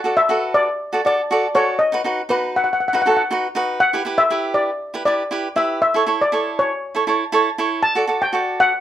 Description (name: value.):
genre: calypso.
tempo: 119 BPM.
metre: 4/4.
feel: straight.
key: D major.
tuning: A4 = 440 Hz.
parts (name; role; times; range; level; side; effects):
steel pan; melody; 0.0-8.8 s; B4 to A5; -18 LUFS; left 2 dB; none.
cavaquinho; accompaniment; 0.0-8.7 s; D#4 to D5; -20 LUFS; right 2 dB; none.
room: light reverb.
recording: minimal, uncompressed stereo recording.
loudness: -16 LUFS.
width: side -11 dB against mid.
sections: 0.0-8.8 A section.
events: none.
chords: 0.0 D; 1.8 B/D#; 3.8 Em; 5.8 A; 7.8 D.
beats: 0.29 0.80 1.30 | 1.80 2.31 2.81 3.31 | 3.81 4.32 4.82 5.33 | 5.83 6.33 6.83 7.34 | 7.84 8.35.